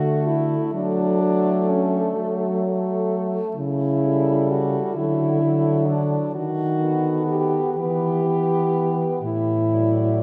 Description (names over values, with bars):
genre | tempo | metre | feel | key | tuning
classical, lyrical piece for horn quartet | 42 BPM (dotted quarters) | 6/8 | rubato | D major | A4 = 441 Hz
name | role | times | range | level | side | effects
clear French horn | melody | 0.0-10.2 s | A4 to D5 | -32 LUFS | equal | none
warm French horn | second line | 0.0-10.2 s | C#4 to G4 | -26 LUFS | equal | none
clear French horn | accompaniment | 0.0-10.2 s | F#3 to B3 | -31 LUFS | equal | none
mellow French horn | bass | 0.0-10.2 s | A2 to F#3 | -25 LUFS | equal | none
room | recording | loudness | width
wet church reverb, RT60 3.5 s | dark, warm production | -22 LUFS | mono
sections
0.0-10.2 A section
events
none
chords
0.0 D; 0.7 D/F#; 3.6 A7/C#; 5.0 D; 6.4 B7/D#; 7.8 Em; 9.2 D/A